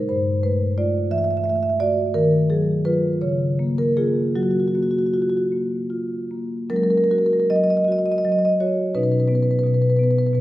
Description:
classical, contemporary piece for solo marimba; 49-59 BPM (dotted quarters); 6/8; rubato; F# major; A4 = 441 Hz
marimba with medium mallets; solo; 0.0-10.4 s; G2 to E5; -18 LUFS; equal
wet recital hall reverb, RT60 1.8 s; heard from further back in the room; -18 LUFS; side -15 dB against mid
0.0-6.7 A section; 6.7-10.4 B section
0.1 Gsus2; 1.1 Esus24; 2.1 D#madd9; 3.2 C#6; 4.4 F#maj7; 6.7 F#add9; 8.9 Badd9

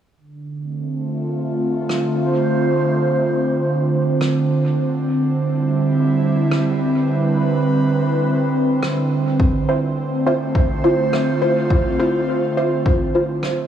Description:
ambient dub; 104 BPM; 4/4; straight; D dorian; A4 = 441 Hz
airy breathy pad; sustained chords; 0.4-13.7 s; D3 to C5; -17 LUFS; right 1 dB; chorus
rim click; drums; 1.9-13.6 s; -30 LUFS; equal; dub echo
electronic kick drum; drums; 9.4-13.0 s; -18 LUFS; left 1 dB
filtered dub chord stab; stabs; 9.7-13.3 s; E4 to C5; -21 LUFS; equal; phaser, analog chorus, dub echo
moderate huge ambient reverb, RT60 4.8 s; -16 LUFS; side -9 dB against mid
0.2-13.7 A section
0.2 Dm7; 4.8 Cmaj9; 9.4 Dm7

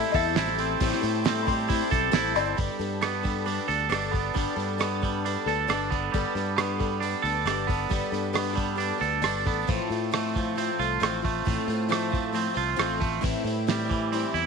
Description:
folk rock and heartland rock; 135 BPM; 4/4; straight; G mixolydian; A4 = 440 Hz
warm upright piano; second line; 0.0-2.6 s; D5 to C6; -30 LUFS; left 13 dB
picked plugged-in twelve-string acoustic guitar; accompaniment; 0.0-14.5 s; A2 to A4; -31 LUFS; left 13 dB; analog chorus
tonewheel organ; sustained chords; 0.0-2.5 s; G4 to A5; -37 LUFS; left 2 dB; slow rotary speaker, overdrive
twangy electric guitar; riff; 0.0-14.5 s; A2 to A4; -28 LUFS; right 12 dB
fingered electric bass; bass; 0.0-14.5 s; G1 to A2; -32 LUFS; left 2 dB
cloth-damped thuddy drum kit; drums; 0.1-14.5 s; hi-hat, kick drum, rim click, snare drum; -30 LUFS; right 3 dB
moderate spring reverb, RT60 1.6 s, small room reverb; 1960s-style stereo with parts hard left and right; -24 LUFS; side -5 dB against mid
0.0-2.6 A section; 2.6-14.5 B section
upright piano solo 0.0-2.6
0.0 Am7; 2.6 Gadd9; 9.7 F/A; 13.2 Am7

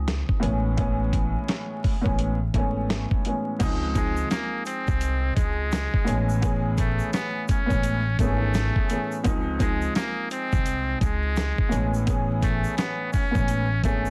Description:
hip hop, boom-bap hip-hop; 85 BPM; 4/4; swing 61% on 16ths; A4 = 441 Hz
dark upright piano; accompaniment; 0.0-14.1 s; Db2 to G#4; -31 LUFS; equal; high-pass filter, low-pass filter
upright bass; bass; 0.0-14.1 s; G#1 to Db2; -29 LUFS; equal
dusty soul sampler-style drum kit; drums; 0.1-14.0 s; crash cymbal, hi-hat, kick drum, snare drum; -28 LUFS; equal
tube shaker; percussion; 3.6-14.1 s; -50 LUFS; equal
trumpet with metal mute; melody; 4.0-14.1 s; Ab3 to C#4; -32 LUFS; equal; high-pass filter, low-pass filter, digital delay
small room ambience; dense, heavily limited modern master, vinyl crackle; -25 LUFS; mono
0.0-3.6 A section; 3.6-14.1 B section
0.4 Amaj9; 3.6 Dbmaj9; 6.1 Amaj9; 9.2 Dbmaj9; 11.7 Amaj9

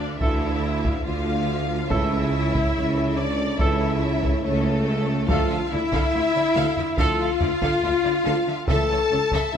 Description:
cinematic, epic orchestral film score; 71 BPM; 4/4; straight; D harmonic minor; A4 = 440 Hz
warm symphonic violin section; melody; 0.0-9.6 s; A4 to A5; -30 LUFS; left 3 dB
warm symphonic violin section; second line; 0.0-9.5 s; C#4 to F5; -32 LUFS; left 3 dB
bright symphonic viola section; accompaniment; 0.0-9.6 s; A3 to D5; -30 LUFS; right 2 dB
dark French horn section; sustained chords; 0.0-9.6 s; A3 to A4; -26 LUFS; left 4 dB
mellow tuba; bass; 0.0-9.6 s; C#2 to D2; -30 LUFS; right 3 dB
rich symphonic cello section; bass; 0.0-9.6 s; C#3 to D3; -31 LUFS; right 2 dB
rich symphonic double bass section; bass; 0.0-9.6 s; C#2 to D2; -30 LUFS; right 3 dB
warm trombone section; sustained chords; 0.2-9.0 s; E3 to A3; -34 LUFS; right 5 dB
clear trumpet; stabs; 0.2-9.0 s; A4; -30 LUFS; right 2 dB
taiko ensemble; drums; 0.2-9.6 s; -26 LUFS; equal
timpani; percussion; 5.3-6.5 s; D3; -35 LUFS; left 1 dB
moderate scoring stage reverb, RT60 1.7 s; -20 LUFS; side -8 dB against mid
0.0-9.6 A section
0.0 Dmadd9; 1.9 A/C#; 5.3 Dmadd9; 8.7 A/C#

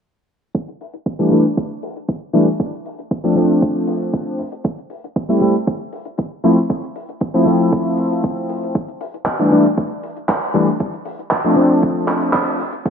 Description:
nu-disco, nu disco; 117 BPM; 4/4; straight; A4 = 443 Hz
damped 70s drum kit; drums; 0.5-12.9 s; handclaps, hi-hat; -24 LUFS; right 1 dB; gated reverb
electronic kick drum; drums; 0.5-12.9 s; -21 LUFS; right 2 dB; high-pass filter on kick, high-pass filter on room
warm electric grand piano; accompaniment; 1.2-12.6 s; E3 to E4; -15 LUFS; left 1 dB; analog chorus, sidechain pumping, low-pass filter, digital delay
light reverb, small room ambience; bright 1980s-style digital production, low-pass filter; -16 LUFS; side -7 dB against mid
0.5-12.9 A section
filter sweep on electric grand piano 0.5-12.9; filter sweep 0.5-12.9
0.5 Emadd11; 2.6 F6; 4.4 Gsus24; 6.4 Fmaj7; 8.8 Emadd11; 10.8 F6

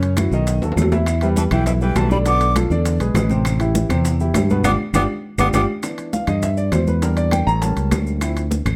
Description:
Afro-Cuban jazz; 202 BPM; 4/4; straight; A4 = 441 Hz
warm grand piano; accompaniment; 0.0-8.4 s; B2 to Bb5; -25 LUFS; equal
fingered electric bass; bass; 0.0-8.8 s; G1 to G2; -21 LUFS; equal
bongos; percussion; 0.0-8.8 s; -32 LUFS; equal
congas; percussion; 0.0-8.8 s; -27 LUFS; equal
maracas; percussion; 0.0-8.8 s; -38 LUFS; equal
timbales; percussion; 0.0-8.8 s; -30 LUFS; equal
claves; percussion; 0.2-8.8 s; -35 LUFS; equal
breathy mellow silver concert flute; melody; 1.2-2.5, 4.7-5.6 s; E5 to D6; -24 LUFS; equal
breathy tenor saxophone; second line; 1.2-2.5, 4.6-5.6 s; B2 to B3; -29 LUFS; equal
light reverb; close, detailed microphones; -19 LUFS; mono
0.0-5.8 A section; 5.8-8.8 B section
drum fill 0.6-1.1, 5.1-5.8; band accent 4.6-5.8; grand piano solo 5.8-8.8
0.5 B7; 1.1 Em7; 2.3 Bm7b5; 2.9 E7; 3.5 Am9; 4.6 G7(no3); 5.8 Em7; 7.0 Em7b5; 7.6 A7b9; 8.2 Dm9

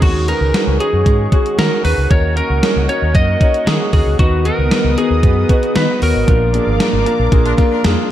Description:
1980s-style pop; 115 BPM; 4/4; straight; A4 = 440 Hz
lightly driven lead guitar; melody; 0.0-7.8 s; Gb4 to Eb5; -19 LUFS; equal; digital delay
warm concert grand piano; accompaniment; 0.0-8.1 s; Bb2 to Db5; -21 LUFS; left 2 dB
lush unison pad; sustained chords; 0.0-8.1 s; B3 to D#6; -24 LUFS; left 2 dB; chorus, phaser
twelve-string electric guitar; riff; 0.0-8.1 s; Eb3 to Ab4; -26 LUFS; right 8 dB; wide subtle chorus, digital delay
vintage muted fingered electric bass; bass; 0.0-7.9 s; Ab1 to Eb3; -17 LUFS; equal
gated 80s digital drum machine; drums; 0.0-8.0 s; crash cymbal, hi-hat, kick drum, snare drum; -15 LUFS; equal; gated reverb, gated reverb snare
clear horn section; stabs; 7.5-8.1 s; D4 to Bb4; -25 LUFS; left 2 dB
light reverb, digital ambience; dark, warm production; -12 LUFS; side -12 dB against mid
0.0-8.1 A section
band accent 6.3-8.1
0.0 Dbsus4; 2.1 Ebm7; 4.2 B; 6.3 Bb

